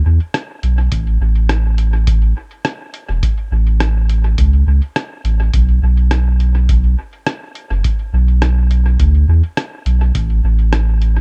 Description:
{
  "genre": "ambient dub",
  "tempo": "104 BPM",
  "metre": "4/4",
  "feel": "swing 54% on 16ths",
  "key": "unclear",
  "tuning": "A4 = 436 Hz",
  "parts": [
    { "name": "soft dub sub bass", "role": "bass", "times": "0.0-11.2 s", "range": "E1 to E2", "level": "-14 LUFS", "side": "equal", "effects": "none" },
    { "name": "lo-fi sampler-style drum kit", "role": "drums", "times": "0.3-11.1 s", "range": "hi-hat, rim click", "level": "-26 LUFS", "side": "equal", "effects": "dub echo" },
    { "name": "electronic kick drum", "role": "drums", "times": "0.9-10.3 s", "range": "none", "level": "-20 LUFS", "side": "equal", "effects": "none" }
  ],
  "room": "little or no reverb",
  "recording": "echo-heavy mix",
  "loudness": "-15 LUFS",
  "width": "mono",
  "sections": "0.0-11.2 A section",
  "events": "none",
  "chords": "none"
}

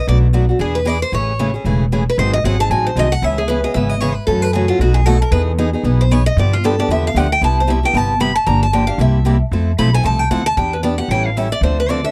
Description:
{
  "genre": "acoustic string swing (jazz manouche)",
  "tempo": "229 BPM",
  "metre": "4/4",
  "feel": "swing 58% on 8ths",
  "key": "E major, C major from 7.4 s",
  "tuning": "A4 = 437 Hz",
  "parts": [
    { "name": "picked steel-string acoustic guitar", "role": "melody", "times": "0.0-12.1 s", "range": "F4 to B5", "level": "-21 LUFS", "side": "equal", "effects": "none" },
    { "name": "picked steel-string acoustic guitar", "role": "accompaniment", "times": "0.1-12.1 s", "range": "B2 to A4", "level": "-22 LUFS", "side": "equal", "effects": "none" },
    { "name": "upright bass", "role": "bass", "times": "0.1-12.0 s", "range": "E1 to G2", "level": "-19 LUFS", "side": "equal", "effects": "none" }
  ],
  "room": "little or no reverb",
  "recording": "dry, close 1970s-style studio recording",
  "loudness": "-16 LUFS",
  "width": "mono",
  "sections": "0.0-7.4 A section; 7.4-12.1 A section",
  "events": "steel-string acoustic guitar solo 0.0-12.1",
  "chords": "0.1 Bm7; 0.6 E7; 1.1 Amaj7; 2.2 G#7; 3.2 C#m7; 4.3 F#m7; 4.8 B7; 5.3 Emaj7; 6.4 G7; 7.4 Cmaj7; 8.5 Gm7; 9.0 C7; 9.5 Fmaj7; 10.6 Em7; 11.1 A7"
}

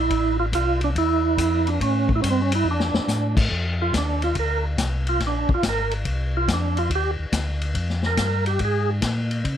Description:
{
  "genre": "soul jazz organ trio",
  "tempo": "141 BPM",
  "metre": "4/4",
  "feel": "swing 67% on 8ths",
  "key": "unclear",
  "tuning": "A4 = 435 Hz",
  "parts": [
    { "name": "percussive tonewheel organ", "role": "melody", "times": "0.0-8.9 s", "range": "B#3 to Bb4", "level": "-23 LUFS", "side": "right 3 dB", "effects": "slow rotary speaker, overdrive, chorus vibrato" },
    { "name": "mellow tonewheel organ", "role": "bass", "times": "0.0-9.6 s", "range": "Ab1 to Db3", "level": "-24 LUFS", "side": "left 1 dB", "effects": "slow rotary speaker" },
    { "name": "vintage drum kit", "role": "drums", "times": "0.1-9.6 s", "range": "crash cymbal, hi-hat, kick drum, ride cymbal, snare drum", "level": "-26 LUFS", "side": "left 2 dB", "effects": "none" }
  ],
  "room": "light reverb",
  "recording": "none",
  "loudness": "-20 LUFS",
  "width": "side -10 dB against mid",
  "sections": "0.0-3.5 A section; 3.5-9.6 B section",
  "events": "drum fill 2.7-3.1; tonewheel organ solo 3.5-9.6",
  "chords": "0.1 Fmaj7; 1.8 A7#9; 2.7 F6; 3.5 Cm11; 5.2 Bbsus2; 6.9 Ebmaj7; 8.6 Absus2"
}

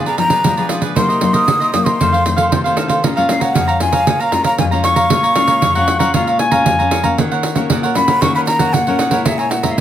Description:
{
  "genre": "samba and choro",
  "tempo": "116 BPM",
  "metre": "4/4",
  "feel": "straight",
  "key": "Bb minor",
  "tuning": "A4 = 440 Hz",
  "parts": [
    { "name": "breathy jazz flute", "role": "melody", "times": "0.0-9.8 s", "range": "Fb5 to Eb6", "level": "-16 LUFS", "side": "left 1 dB", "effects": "none" },
    { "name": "cavaquinho", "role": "accompaniment", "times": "0.0-9.8 s", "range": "Eb4 to Bb5", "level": "-19 LUFS", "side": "right 2 dB", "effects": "none" },
    { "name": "nylon-string guitar", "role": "accompaniment", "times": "0.0-9.8 s", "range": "F2 to Gb4", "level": "-19 LUFS", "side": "left 4 dB", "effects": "none" },
    { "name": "pandeiro", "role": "percussion", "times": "0.1-9.8 s", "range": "none", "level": "-18 LUFS", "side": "right 4 dB", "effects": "none" },
    { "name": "bright clarinet", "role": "second line", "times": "5.4-7.1 s", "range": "F5 to Ab5", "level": "-18 LUFS", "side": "left 2 dB", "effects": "none" }
  ],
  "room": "moderate studio reverb, RT60 0.7 s",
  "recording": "none",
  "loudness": "-12 LUFS",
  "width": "side -10 dB against mid",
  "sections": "0.0-7.2 A section; 7.2-9.8 B section",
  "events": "none",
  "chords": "0.0 Bdim7; 1.0 Cm7b5; 2.0 F7; 3.0 Bbm7; 7.2 Ebm7; 9.3 Bbm7b5"
}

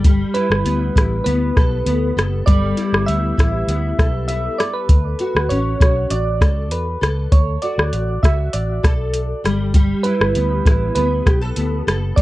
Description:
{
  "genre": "indie pop, bedroom pop",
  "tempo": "99 BPM",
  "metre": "4/4",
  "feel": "straight",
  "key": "unclear",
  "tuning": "A4 = 441 Hz",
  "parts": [
    { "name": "nylon-string guitar", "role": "accompaniment", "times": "0.0-12.2 s", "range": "G3 to A4", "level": "-23 LUFS", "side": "left 2 dB", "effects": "ensemble chorus, vibrato effect" },
    { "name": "vintage muted fingered electric bass", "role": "bass", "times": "0.0-12.2 s", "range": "F#1 to E2", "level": "-21 LUFS", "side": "equal", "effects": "none" },
    { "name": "soft vintage rhythm box", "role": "drums", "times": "0.0-12.2 s", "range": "hi-hat, kick drum, rim click", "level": "-15 LUFS", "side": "equal", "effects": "overdrive" },
    { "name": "soft electric-piano-like synth keys", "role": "melody", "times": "0.3-12.2 s", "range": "B4 to E5", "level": "-24 LUFS", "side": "right 3 dB", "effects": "lush chorus, analog delay" }
  ],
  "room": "light reverb",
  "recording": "cassette tape",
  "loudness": "-15 LUFS",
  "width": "side -17 dB against mid",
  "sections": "0.0-12.2 A section",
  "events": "none",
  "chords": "0.0 G69; 4.9 Dmaj7; 9.4 G69"
}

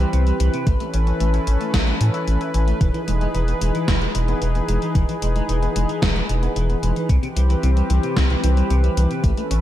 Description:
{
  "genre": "synthwave",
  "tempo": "112 BPM",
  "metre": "4/4",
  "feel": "straight",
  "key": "E major",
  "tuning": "A4 = 441 Hz",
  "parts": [
    { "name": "warm analog pad", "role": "sustained chords", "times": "0.0-9.6 s", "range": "E3 to B4", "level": "-24 LUFS", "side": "equal", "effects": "chorus, sidechain pumping" },
    { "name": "clean electric guitar", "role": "riff", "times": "0.0-9.5 s", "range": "C3 to E4", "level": "-28 LUFS", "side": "left 2 dB", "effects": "analog chorus, ping-pong delay" },
    { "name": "round analog bass", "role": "bass", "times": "0.0-9.6 s", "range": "E1 to A2", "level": "-19 LUFS", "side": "equal", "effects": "none" },
    { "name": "gated 80s digital drum machine", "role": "drums", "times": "0.0-9.6 s", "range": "hi-hat, snare drum", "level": "-28 LUFS", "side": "equal", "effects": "gated reverb, gated reverb snare, overdrive" },
    { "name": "electronic kick drum", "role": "drums", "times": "0.7-9.3 s", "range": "none", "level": "-20 LUFS", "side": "equal", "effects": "overdrive" }
  ],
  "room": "light reverb",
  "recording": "dark, warm production",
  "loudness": "-17 LUFS",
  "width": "side -12 dB against mid",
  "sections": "0.0-9.6 A section",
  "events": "none",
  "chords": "0.0 Cmaj7; 0.7 Aadd9; 2.8 Emaj7; 7.1 Cmaj7"
}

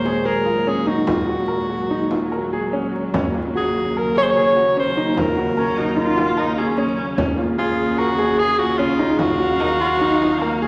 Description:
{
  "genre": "contemporary instrumental, chamber music in an uneven meter",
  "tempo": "148 BPM",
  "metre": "5/4",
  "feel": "straight",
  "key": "unclear",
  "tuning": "A4 = 440 Hz",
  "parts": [
    { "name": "bright alto saxophone", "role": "melody", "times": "0.0-10.7 s", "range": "F4 to Db5", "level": "-23 LUFS", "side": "equal", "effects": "none" },
    { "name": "dark studio string section", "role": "sustained chords", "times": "0.0-10.7 s", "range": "Bb2 to F5", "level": "-26 LUFS", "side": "equal", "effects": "none" },
    { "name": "upright bass", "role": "bass", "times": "0.0-10.7 s", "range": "Eb2", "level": "-36 LUFS", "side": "equal", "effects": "none" },
    { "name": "clear grand piano", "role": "arpeggios", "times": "0.1-10.7 s", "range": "Db4 to Bb4", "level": "-25 LUFS", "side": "equal", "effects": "none" },
    { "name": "frame drum", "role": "percussion", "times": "0.1-10.4 s", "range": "none", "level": "-31 LUFS", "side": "equal", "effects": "none" },
    { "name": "rich viola", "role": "second line", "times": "5.6-10.7 s", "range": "Bb3 to F4", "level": "-26 LUFS", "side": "equal", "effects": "none" }
  ],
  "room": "wet recital hall reverb, RT60 1.7 s",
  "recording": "vinyl crackle",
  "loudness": "-19 LUFS",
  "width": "mono",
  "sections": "0.0-10.7 A section",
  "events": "none",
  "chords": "0.0 Gbadd9/Eb; 7.2 Bbm7/Eb; 9.2 Ebm9"
}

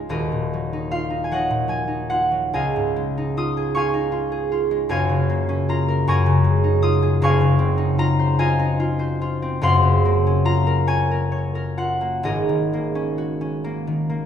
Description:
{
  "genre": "classical, solo harp piece",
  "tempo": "42-53 BPM (dotted quarters)",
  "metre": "6/8",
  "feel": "rubato",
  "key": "Db major",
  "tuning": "A4 = 440 Hz",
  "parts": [
    { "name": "concert harp", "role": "solo", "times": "0.0-14.3 s", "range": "Eb1 to Eb6", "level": "-18 LUFS", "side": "equal", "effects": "none" }
  ],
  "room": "wet recital hall reverb, RT60 1.6 s",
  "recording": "recorded in a church or concert hall",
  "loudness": "-18 LUFS",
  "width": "side -8 dB against mid",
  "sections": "0.0-14.3 A section",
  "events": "none",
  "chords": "0.1 Ebm9; 2.5 Dbadd9; 4.9 Gbmaj7; 6.1 Ebm11/Gb; 7.2 Dbmaj9/Gb; 9.6 Gbmaj7#11; 12.3 Ab9sus4"
}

